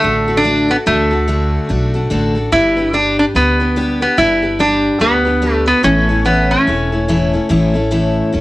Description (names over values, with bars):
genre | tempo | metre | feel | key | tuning
honky-tonk and classic country | 144 BPM | 4/4 | swing 60% on 8ths | D major | A4 = 441 Hz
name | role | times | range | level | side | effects
lap resonator guitar | melody | 0.0-8.4 s | A3 to E4 | -14 LUFS | equal | none
picked steel-string acoustic guitar | accompaniment | 0.0-8.4 s | A2 to B4 | -17 LUFS | left 1 dB | cassette tape
upright bass | bass | 0.0-8.4 s | E1 to D2 | -20 LUFS | equal | none
room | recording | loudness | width
moderate studio reverb, RT60 0.6 s | home recording on cassette | -12 LUFS | side -18 dB against mid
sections
0.0-8.4 A section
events
none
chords
0.0 D; 2.5 G; 5.8 A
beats
0.03 0.45 | 0.86 1.28 1.69 2.11 | 2.52 2.94 3.35 3.77 | 4.18 4.60 5.01 5.43 | 5.84 6.26 6.67 7.09 | 7.50 7.92 8.33